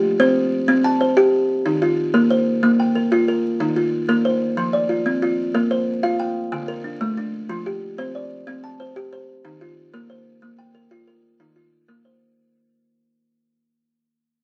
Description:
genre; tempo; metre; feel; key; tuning
southern african traditional; 123 BPM (dotted quarters); 12/8; straight; unclear; A4 = 438 Hz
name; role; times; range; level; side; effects
buzzing kalimba; arpeggios; 0.0-12.5 s; D3 to A5; -20 LUFS; equal; none
room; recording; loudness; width
moderate studio reverb, RT60 0.6 s; very old 78 rpm record, vinyl crackle; -20 LUFS; mono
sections
0.0-12.4 A section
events
fade-out 0.0-12.4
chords
0.0 F5; 0.7 C5; 1.7 Eb5; 2.6 Bb5; 3.6 Eb5; 4.6 F5; 5.5 Bb5; 6.5 D5; 7.5 F5; 8.5 C5; 9.4 Eb5; 10.4 Bb5; 11.4 Eb5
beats
0.20 | 0.69 1.17 1.66 2.14 | 2.63 3.12 3.60 4.09 | 4.58 5.06 5.55 6.03 | 6.52 7.01 7.49 7.98 | 8.47 8.95 9.44 9.93 | 10.42 10.90 11.39 11.88

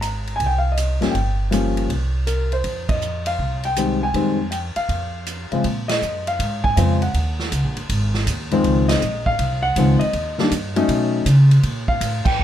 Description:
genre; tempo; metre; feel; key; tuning
jazz piano trio; 160 BPM; 4/4; swing 66% on 8ths; F minor, Bb minor from 5.6 s; A4 = 436 Hz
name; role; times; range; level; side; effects
warm baby grand piano; melody; 0.0-12.4 s; Db3 to Bb5; -21 LUFS; left 2 dB; none
upright bass; bass; 0.0-12.4 s; Gb1 to C#3; -20 LUFS; right 1 dB; none
swinging big-band drum kit; drums; 0.0-12.3 s; crash cymbal, hi-hat, kick drum, ride cymbal, snare drum; -27 LUFS; right 2 dB; none
room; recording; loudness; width
little or no reverb; faint mains hum; -17 LUFS; side -11 dB against mid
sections
0.0-5.6 A section; 5.6-12.4 B section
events
band accent 2.8, 5.8, 8.8, 12.2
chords
0.0 Abmaj9; 1.1 Gm7b5; 1.9 Bbsus2/C; 2.6 Fm7; 4.9 F5; 5.6 Bb7(no3); 7.1 Ebm7; 7.9 Ab5; 8.6 Dbmaj7; 10.1 Eb; 10.9 B9; 11.6 Bbmaj7(no3)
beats
0.01 0.39 0.77 | 1.14 1.52 1.89 2.27 | 2.65 3.02 3.40 3.77 | 4.15 4.52 4.90 5.27 | 5.65 6.02 6.40 6.77 | 7.14 7.52 7.89 8.27 | 8.64 9.02 9.39 9.76 | 10.14 10.51 10.89 11.26 | 11.63 12.01 12.38

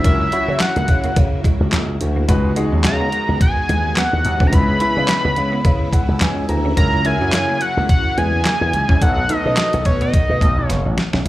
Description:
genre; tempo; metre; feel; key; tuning
early-eighties boogie funk; 107 BPM; 4/4; swing 56% on 16ths; unclear; A4 = 440 Hz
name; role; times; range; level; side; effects
fat analog lead; melody; 0.0-10.9 s; C#5 to B5; -20 LUFS; equal; slapback echo
warm concert grand piano; accompaniment; 0.0-10.1 s; F#3 to A#5; -24 LUFS; left 2 dB; slapback echo
string machine, violins; sustained chords; 0.0-11.2 s; C#3 to F#4; -27 LUFS; equal; ensemble chorus
slap bass with an envelope filter; bass; 0.0-11.3 s; F#1 to C#3; -19 LUFS; equal; none
detuned 8-bit digital drum machine; drums; 0.0-11.3 s; handclaps, hi-hat, kick drum, snare drum; -17 LUFS; equal; none
clean electric guitar; riff; 0.2-11.2 s; G#3 to E4; -28 LUFS; right 4 dB; ensemble chorus
room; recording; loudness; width
little or no reverb; live gig heard through the venue's PA, club reverb; -14 LUFS; side -16 dB against mid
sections
0.0-11.3 A section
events
grand piano fill 5.7-6.8; drum fill 10.7-11.3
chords
0.0 F#7/C#; 2.3 G#m7/C#; 4.5 C#m7; 6.8 F#7/C#; 9.0 B7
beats
| 0.04 0.60 1.17 1.73 | 2.29 2.85 3.41 3.97 | 4.53 5.09 5.65 6.21 | 6.77 7.33 7.89 8.46 | 9.02 9.58 10.14 10.70 | 11.26

